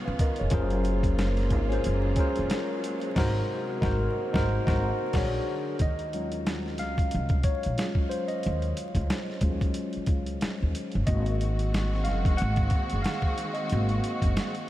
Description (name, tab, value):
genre	R&B, neo-soul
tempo	91 BPM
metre	4/4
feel	swing 57% on 16ths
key	Eb dorian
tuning	A4 = 440 Hz
part	warm symphonic string section	sustained chords	0.0-5.8, 11.1-14.7 s	C3 to Gb4	-36 LUFS	right 2 dB	none
part	tine electric piano	accompaniment	0.1-14.7 s	Gb3 to Gb5	-30 LUFS	left 1 dB	wide subtle chorus
part	upright bass	bass	0.1-14.3 s	F1 to Eb2	-28 LUFS	equal	none
part	boom bap sampler-style drum kit	drums	0.2-14.7 s	crash cymbal, hi-hat, kick drum, snare drum	-29 LUFS	equal	none
room	light reverb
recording	vinyl crackle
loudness	-25 LUFS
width	side -14 dB against mid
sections	0.0-5.8 A section; 5.8-14.7 B section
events	band accent 3.2-5.8; tine electric piano solo 5.8-14.7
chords	0.0 Db9; 0.5 Gbmaj9; 3.2 Ab9; 5.1 Bb7alt; 5.8 Ebm11; 11.1 Ab7